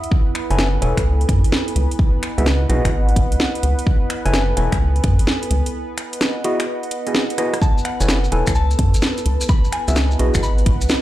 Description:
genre	UK garage, two-step garage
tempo	128 BPM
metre	4/4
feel	swing 66% on 16ths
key	F# dorian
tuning	A4 = 439 Hz
part	warm analog pad	sustained chords	0.0-11.0 s	B3 to E5	-29 LUFS	equal	chorus, sidechain pumping
part	house drum kit	drums	0.0-11.0 s	finger snaps, hi-hat, rim click, snare drum	-22 LUFS	equal	none
part	warbly tape-like pad	texture	0.0-11.0 s	E4 to D#6	-29 LUFS	right 3 dB	chorus, built-in reverb, sidechain pumping
part	electronic kick drum	drums	0.1-10.8 s	none	-18 LUFS	equal	none
part	overdriven tine electric piano	stabs	0.5-10.4 s	B3 to G#5	-23 LUFS	equal	phaser, digital delay
part	rubbery square bass	bass	0.5-10.9 s	E1 to F#2	-17 LUFS	equal	none
part	soft synth bell	melody	7.6-11.0 s	F#5 to B5	-28 LUFS	left 2 dB	chorus, ping-pong delay
part	maracas	percussion	7.6-11.0 s	none	-31 LUFS	left 2 dB	none
room	little or no reverb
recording	played on a big sound system in a bare room, large studio reverb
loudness	-16 LUFS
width	side -14 dB against mid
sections	0.0-11.0 A section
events	break 5.7-7.6; drum fill 7.4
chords	0.1 F#m11; 1.8 C#m11; 3.9 F#m11; 5.5 C#m11 (rootless); 7.6 F#m11; 9.3 C#m11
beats	| 0.12 0.58 1.05 1.52 | 1.99 2.46 2.93 3.40 | 3.87 4.33 4.80 5.27 | 5.74 6.21 6.68 7.15 | 7.62 8.09 8.55 9.02 | 9.49 9.96 10.43 10.90

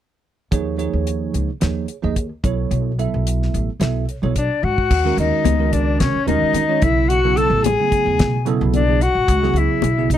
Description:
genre	electric jazz fusion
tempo	110 BPM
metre	4/4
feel	swing 53% on 16ths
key	Eb phrygian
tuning	A4 = 440 Hz
part	bell-like tine electric piano	accompaniment	0.5-10.2 s	C#3 to Fb5	-23 LUFS	right 9 dB	lush chorus
part	upright bass	bass	0.5-10.2 s	A1 to Eb3	-20 LUFS	equal	none
part	damped 70s drum kit	drums	0.5-10.2 s	crash cymbal, hi-hat, kick drum, snare drum, toms	-22 LUFS	left 1 dB	none
part	warm alto saxophone	melody	4.4-10.2 s	Db4 to A4	-20 LUFS	left 1 dB	slapback echo
part	bright reedy silver concert flute	second line	4.4-10.2 s	Db5 to A5	-22 LUFS	left 13 dB	none
part	congas	percussion	4.9-10.0 s	none	-25 LUFS	left 20 dB	none
room	little or no reverb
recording	dry, close 1970s-style studio recording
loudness	-16 LUFS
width	side -11 dB against mid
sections	0.5-4.9 A section; 4.9-10.2 B section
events	drum fill 4.6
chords	0.5 Ebsus2; 2.4 Bsus2; 4.9 Ebm7; 6.8 Bsus2; 9.3 Dbm7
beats	| 0.52 1.07 1.62 2.17 | 2.71 3.26 3.81 4.36 | 4.90 5.45 6.00 6.54 | 7.09 7.64 8.18 8.73 | 9.27 9.82

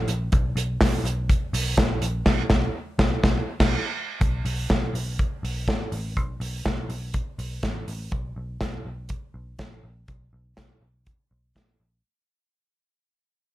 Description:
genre	jangly indie pop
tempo	123 BPM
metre	4/4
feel	straight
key	unclear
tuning	A4 = 440 Hz
part	vintage muted picked electric bass	bass	0.0-12.0 s	A1 to B1	-29 LUFS	equal	none
part	modern studio drum kit	drums	0.1-11.7 s	crash cymbal, hi-hat, kick drum, snare drum	-24 LUFS	equal	gated reverb
room	little or no reverb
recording	none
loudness	-23 LUFS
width	side -16 dB against mid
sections	0.0-4.2 A section; 4.2-12.0 B section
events	band accent 2.3-4.2; fade-out 4.2-12.0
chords	none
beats	| 0.33 0.82 1.30 1.79 | 2.27 2.76 3.24 3.73 | 4.21 4.70 5.19 5.68 | 6.17 6.65 7.14 7.63 | 8.12 8.61 9.10 9.59 | 10.09 10.58 11.07 11.56

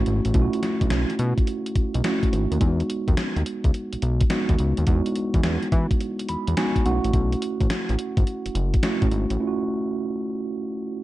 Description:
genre	R&B, new jack swing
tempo	106 BPM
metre	4/4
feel	swing 67% on 16ths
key	E major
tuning	A4 = 439 Hz
part	mellow tine electric piano	accompaniment	0.0-11.0 s	G#3 to B5	-25 LUFS	right 2 dB	slow stereo tremolo
part	fat analog bass	bass	0.0-9.4 s	F#1 to E3	-23 LUFS	equal	none
part	gated 80s digital drum machine	drums	0.1-9.4 s	hi-hat, kick drum, snare drum	-23 LUFS	equal	gated reverb, gated reverb snare
room	little or no reverb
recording	dark, warm production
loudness	-21 LUFS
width	side -16 dB against mid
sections	0.0-11.0 A section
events	tine electric piano fill 6.0-7.1; break 9.4-11.0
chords	0.0 B9sus4; 2.6 Emaj7; 6.9 B9sus4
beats	| 0.34 0.91 1.48 2.04 | 2.61 3.17 3.74 4.31 | 4.87 5.44 6.00 6.57 | 7.14 7.70 8.27 8.84 | 9.40 9.97 10.53

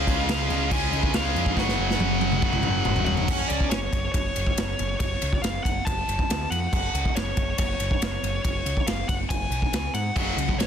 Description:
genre	heavy metal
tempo	140 BPM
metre	4/4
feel	straight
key	F# harmonic minor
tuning	A4 = 440 Hz
part	high-gain lead guitar	melody	0.0-10.7 s	C#5 to A5	-29 LUFS	left 1 dB	distortion
part	heavy high-gain guitar	riff	0.0-3.8, 10.2-10.7 s	F#2 to C#4	-26 LUFS	right 1 dB	distortion
part	growling picked electric bass	bass	0.0-10.7 s	F#1 to G#2	-29 LUFS	equal	overdrive
part	modern studio drum kit	drums	0.1-10.7 s	crash cymbal, kick drum, ride cymbal, snare drum, toms	-25 LUFS	equal	none
room	small room ambience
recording	dense, heavily limited modern master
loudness	-22 LUFS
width	side -8 dB against mid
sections	0.0-3.3 A section; 3.3-10.7 B section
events	drum fill 1.6-3.3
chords	0.0 C#; 1.6 F#5; 6.3 D5; 6.7 F#5; 9.7 C#5; 10.2 F#5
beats	0.28 0.71 1.14 | 1.56 1.99 2.42 2.85 | 3.28 3.71 4.14 4.57 | 5.00 5.43 5.86 6.29 | 6.72 7.15 7.58 8.01 | 8.44 8.87 9.30 9.73 | 10.16 10.59

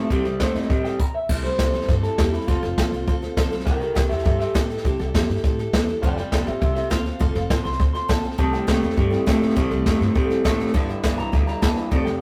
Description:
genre	rockabilly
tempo	203 BPM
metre	4/4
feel	straight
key	C major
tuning	A4 = 440 Hz
part	electric guitar through a small old amp	melody	0.0-12.2 s	E4 to C6	-31 LUFS	equal	warbly pitch drift
part	picked steel-string acoustic guitar	accompaniment	0.0-12.2 s	C3 to D5	-30 LUFS	equal	none
part	electric guitar through a small old amp	riff	0.0-1.0, 8.4-12.2 s	F2 to A3	-26 LUFS	equal	none
part	upright bass	bass	0.1-12.2 s	F1 to A2	-30 LUFS	equal	none
part	jazz brush drum kit	drums	0.1-12.1 s	crash cymbal, hi-hat, kick drum, snare drum	-24 LUFS	equal	none
room	light reverb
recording	rough rehearsal-room recording, tube saturation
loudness	-22 LUFS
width	mono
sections	0.0-1.3 A section; 1.3-12.2 B section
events	clean electric guitar solo 1.3-12.2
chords	0.0 C6; 2.5 F6; 3.7 C6; 6.0 F6; 8.4 C6; 10.7 G6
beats	| 0.11 0.40 0.70 1.00 | 1.29 1.59 1.89 2.18 | 2.48 2.77 3.07 3.37 | 3.66 3.96 4.25 4.55 | 4.85 5.14 5.44 5.73 | 6.03 6.32 6.62 6.91 | 7.21 7.50 7.80 8.09 | 8.39 8.68 8.98 9.27 | 9.57 9.86 10.15 10.45 | 10.74 11.04 11.33 11.62 | 11.92

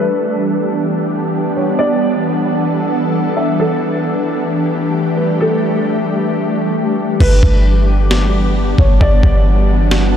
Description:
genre	hip hop, atmospheric cloud-rap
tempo	133 BPM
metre	4/4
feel	half-time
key	G major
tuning	A4 = 440 Hz
part	felt-muted upright piano	melody	0.0-9.4 s	A4 to E5	-21 LUFS	equal	wide subtle chorus, low-pass filter, diffuse ambient delay
part	ethereal airy pad	sustained chords	0.0-10.2 s	E3 to A4	-16 LUFS	equal	ensemble chorus, built-in reverb, sidechain pumping, low-pass filter
part	clean 808-style bass	bass	7.2-10.2 s	G1	-12 LUFS	equal	none
part	breakbeat sampler-style drum kit	drums	7.2-10.0 s	crash cymbal, kick drum, snare drum	-17 LUFS	equal	none
room	moderate huge ambient reverb, RT60 7.5 s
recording	dreamy mix soaked in reverb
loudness	-12 LUFS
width	side -9 dB against mid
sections	0.0-7.2 A section; 7.2-10.2 B section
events	filter sweep 0.0-7.2; hi-hats muted 7.2-10.2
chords	0.0 G6; 3.6 A7sus4; 7.2 G6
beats	0.44 0.89 1.34 | 1.79 2.24 2.69 3.15 | 3.60 4.05 4.50 4.95 | 5.40 5.85 6.30 6.75 | 7.21 7.66 8.11 8.56 | 9.01 9.46 9.91

